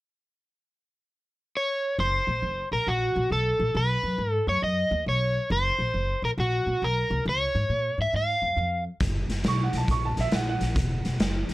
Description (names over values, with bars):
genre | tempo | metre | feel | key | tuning
electric blues shuffle | 137 BPM | 4/4 | swing 66% on 8ths | unclear | A4 = 440 Hz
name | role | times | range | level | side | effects
overdriven semi-hollow guitar | melody | 1.6-8.8 s | F#4 to E#5 | -25 LUFS | equal | none
upright bass | bass | 2.0-11.5 s | E1 to A#2 | -28 LUFS | equal | none
raw garage drum kit | drums | 9.0-11.5 s | hi-hat, kick drum, snare drum | -27 LUFS | equal | none
clear upright piano | accompaniment | 9.5-11.3 s | E5 to C#6 | -31 LUFS | right 4 dB | none
room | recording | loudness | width
little or no reverb | none | -24 LUFS | side -17 dB against mid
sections
0.2-2.0 A section; 2.0-9.0 B section; 9.0-11.5 C section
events
none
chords
0.2 N.C.; 2.0 F#; 3.7 B; 5.5 F#; 7.3 C#; 9.0 F#7